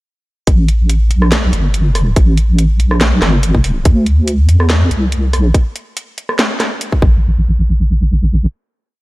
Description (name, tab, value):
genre	deep dubstep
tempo	142 BPM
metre	4/4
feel	swing 54% on 16ths, half-time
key	unclear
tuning	A4 = 443 Hz
part	deep soft wobble bass	bass	0.5-8.5 s	G1 to E2	-11 LUFS	equal	chorus
part	electronic kick drum	drums	0.5-7.1 s	none	-11 LUFS	equal	none
part	garage drum kit	drums	0.5-6.9 s	hi-hat, rim click, snare drum	-18 LUFS	equal	none
room	little or no reverb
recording	none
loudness	-11 LUFS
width	side -20 dB against mid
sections	0.5-7.2 drop; 7.2-9.0 final hit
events	drop 0.5-7.2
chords	none